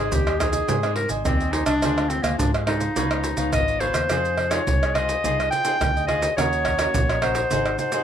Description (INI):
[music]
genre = samba and choro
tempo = 106 BPM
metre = 4/4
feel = straight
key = F minor from 4.1 s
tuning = A4 = 440 Hz
[part]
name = clear clarinet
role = melody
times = 0.0-8.0 s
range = Bb3 to G5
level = -24 LUFS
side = left 1 dB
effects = none
[part]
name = cavaquinho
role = accompaniment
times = 0.0-8.0 s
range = D4 to Ab5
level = -30 LUFS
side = right 3 dB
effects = none
[part]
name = nylon-string guitar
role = accompaniment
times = 0.0-8.0 s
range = Ab2 to Ab4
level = -32 LUFS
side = left 3 dB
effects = none
[part]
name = vintage muted fingered electric bass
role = bass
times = 0.0-7.8 s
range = Ab1 to Ab2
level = -28 LUFS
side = left 1 dB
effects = none
[part]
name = maracas, surdo, pandeiro and tamborim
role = percussion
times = 0.1-8.0 s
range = none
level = -24 LUFS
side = right 2 dB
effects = none
[sound]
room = moderate small room reverb, RT60 0.5 s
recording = minimal, uncompressed stereo recording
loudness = -20 LUFS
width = side -9 dB against mid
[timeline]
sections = 0.0-4.1 A section; 4.1-8.0 B section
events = none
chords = 0.0 Abmaj7; 1.8 Dm7b5; 3.0 Db9; 4.1 Fm7; 6.4 Ebm7; 7.5 Ab7